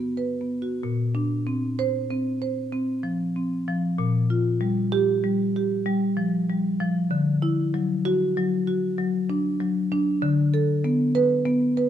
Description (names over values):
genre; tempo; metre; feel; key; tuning
classical, contemporary piece for solo marimba; 96 BPM; 5/4; straight; Bb lydian; A4 = 441 Hz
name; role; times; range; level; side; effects
marimba with soft mallets; solo; 0.0-11.9 s; G2 to C5; -22 LUFS; equal; none
room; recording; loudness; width
moderate stone room reverb, RT60 1.3 s; close, detailed microphones; -22 LUFS; side -10 dB against mid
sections
0.8-11.9 A section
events
none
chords
0.0 Gmaj7; 0.8 Bbadd9; 4.0 Gm7/Bb; 7.1 Dadd9; 10.2 Bm7/D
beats
0.18 | 0.83 1.47 2.10 2.73 3.36 | 3.98 4.61 5.23 5.86 6.48 | 7.11 7.73 8.35 8.98 9.60 | 10.22 10.84 11.46